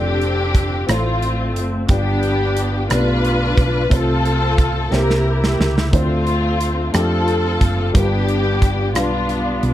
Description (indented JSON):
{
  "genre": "slow gospel",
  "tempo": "59 BPM (dotted quarters)",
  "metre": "6/8",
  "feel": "straight",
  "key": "unclear",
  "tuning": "A4 = 440 Hz",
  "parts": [
    { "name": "warm symphonic string section", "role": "melody", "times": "0.0-9.7 s", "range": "A3 to B4", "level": "-20 LUFS", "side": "left 2 dB", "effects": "none" },
    { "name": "dark upright piano", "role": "accompaniment", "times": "0.0-9.7 s", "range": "G2 to D5", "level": "-24 LUFS", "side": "left 1 dB", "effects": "plate reverb" },
    { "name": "hollow-body short-scale fingered electric bass", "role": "bass", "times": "0.0-9.7 s", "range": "F1 to F2", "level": "-20 LUFS", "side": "right 1 dB", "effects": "none" },
    { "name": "modern studio drum kit", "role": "drums", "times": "0.2-9.7 s", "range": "hi-hat, kick drum, rim click, snare drum", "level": "-20 LUFS", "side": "right 1 dB", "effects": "none" }
  ],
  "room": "light reverb",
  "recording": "none",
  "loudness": "-15 LUFS",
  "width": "side -13 dB against mid",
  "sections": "0.0-9.7 A section",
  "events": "drum fill 4.9-5.9",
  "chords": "0.0 Dm7/F; 1.9 G7; 3.9 F/C; 4.9 C7; 5.9 Dm7; 7.9 G7"
}